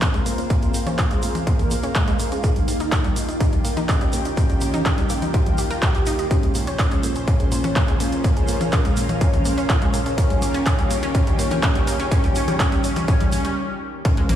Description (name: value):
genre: melodic techno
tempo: 124 BPM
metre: 4/4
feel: straight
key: unclear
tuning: A4 = 440 Hz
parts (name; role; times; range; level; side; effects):
- fat analog lead; melody; 0.0-14.4 s; Ab3 to G4; -27 LUFS; equal; ensemble chorus, cassette tape, sidechain pumping, tape echo
- lush unison pad; sustained chords; 0.0-13.5 s; Bb2 to C5; -30 LUFS; equal; chorus, sidechain pumping
- analog pluck; arpeggios; 0.0-14.4 s; G3 to Eb5; -29 LUFS; equal; chorus, sidechain pumping, digital delay
- deep house drum kit; drums; 0.0-14.4 s; congas, handclaps, hi-hat; -27 LUFS; left 1 dB; overdrive, sidechain pumping on perc, sidechain pumping on hats
- electronic kick drum; drums; 0.0-14.1 s; none; -19 LUFS; equal; distortion, overdrive
- tube shaker; percussion; 0.0-13.5 s; none; -36 LUFS; right 3 dB; none
- ethereal airy pad; texture; 0.0-13.6 s; Bb3 to G5; -31 LUFS; equal; ensemble chorus, built-in reverb, phaser, sidechain pumping
- analog drone; drone; 14.2-14.4 s; Bb2 to F3; -30 LUFS; left 1 dB; chorus, sidechain pumping
- tight sequencer bass; bass; 14.2-14.4 s; Bb1; -21 LUFS; equal; none
room: light reverb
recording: played on a big sound system in a bare room, stone room reverb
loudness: -18 LUFS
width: side -10 dB against mid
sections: 0.0-14.1 A section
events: build-up 0.0-14.1; filter sweep on synth arpeggio sound 0.0-14.1; filter sweep on analog synth lead 0.0-14.1; stop 13.6-14.1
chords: 0.0 Bbm7; 2.4 Eb; 6.3 Bbm7; 10.2 Eb